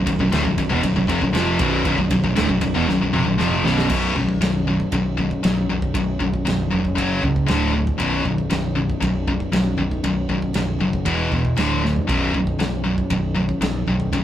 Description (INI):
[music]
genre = heavy metal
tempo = 117 BPM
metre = 4/4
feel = straight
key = B minor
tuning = A4 = 440 Hz
[part]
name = crunchy overdriven guitar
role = riff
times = 0.0-3.9 s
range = B1 to E#3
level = -25 LUFS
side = right 2 dB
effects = none
[part]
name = scooped high-gain guitar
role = riff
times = 0.0-14.2 s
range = B1 to F#3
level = -21 LUFS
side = left 2 dB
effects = distortion
[part]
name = sludgy distorted guitar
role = riff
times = 0.0-14.2 s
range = B1 to F#3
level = -27 LUFS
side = right 4 dB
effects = overdrive
[part]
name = modern bright picked electric bass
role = bass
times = 0.0-14.2 s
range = B0 to B1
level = -25 LUFS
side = equal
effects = none
[part]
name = modern studio drum kit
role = drums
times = 0.1-14.2 s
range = crash cymbal, kick drum, ride cymbal, snare drum, toms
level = -27 LUFS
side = right 1 dB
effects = none
[sound]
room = moderate studio reverb, RT60 0.5 s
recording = rough rehearsal-room recording, tube saturation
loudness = -18 LUFS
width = side -11 dB against mid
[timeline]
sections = 0.0-3.9 A section; 3.9-14.2 B section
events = drum fill 2.9-3.9, 11.8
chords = 0.0 Bm; 3.9 B5; 7.0 F#5; 7.5 D5; 8.0 B5; 11.1 E5; 11.6 D5; 12.1 B5